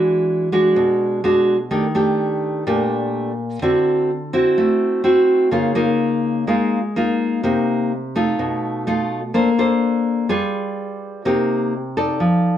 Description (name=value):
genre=bossa nova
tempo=126 BPM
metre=4/4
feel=straight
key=unclear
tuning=A4 = 441 Hz
part: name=nylon-string guitar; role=solo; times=0.0-12.6 s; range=Bb2 to D5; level=-16 LUFS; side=equal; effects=none
room=wet studio reverb, RT60 0.8 s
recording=band playing live in one room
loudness=-16 LUFS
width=side -10 dB against mid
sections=0.0-12.6 A section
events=none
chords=0.0 E9; 1.7 Ebmaj7#11; 3.6 D9; 5.5 Db69; 7.4 Cm7; 8.4 B7#11; 9.3 Bbmaj9; 10.3 G7b9; 11.3 Cm7